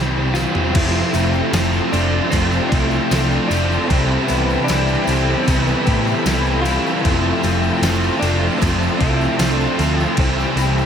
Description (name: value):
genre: rock, shoegaze and dream pop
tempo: 76 BPM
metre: 4/4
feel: straight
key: unclear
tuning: A4 = 443 Hz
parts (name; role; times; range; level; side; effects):
- direct-recorded clean electric guitar; melody; 0.0-10.9 s; B3 to C5; -25 LUFS; equal; wide subtle chorus, ping-pong delay
- string machine, violins; sustained chords; 0.0-10.9 s; F3 to B5; -27 LUFS; equal; ensemble chorus
- biting overdriven guitar; riff; 0.0-10.9 s; C3 to F4; -22 LUFS; right 8 dB; reverse reverb
- crunchy overdriven guitar; riff; 0.0-10.9 s; F2 to F4; -21 LUFS; left 6 dB; analog chorus
- hollow-body short-scale picked electric bass; bass; 0.0-10.8 s; F1 to A2; -20 LUFS; equal; none
- tambourine; percussion; 0.3-10.9 s; none; -36 LUFS; left 8 dB; none
- clean 12-bit digital drum machine; drums; 0.4-10.7 s; crash cymbal, hi-hat, kick drum, snare drum, toms; -24 LUFS; equal; overdrive
room: wet huge ambient reverb, RT60 8.7 s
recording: dreamy mix soaked in reverb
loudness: -15 LUFS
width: side -8 dB against mid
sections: 0.7-10.9 A section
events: drum fill 0.3-0.7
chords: 0.0 Cmaj7; 0.7 Fmaj7; 3.9 Cmaj7; 7.0 Fmaj7; 10.2 Cmaj7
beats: | 0.74 1.53 2.32 3.11 | 3.89 4.68 5.46 6.25 | 7.03 7.82 8.60 9.38 | 10.16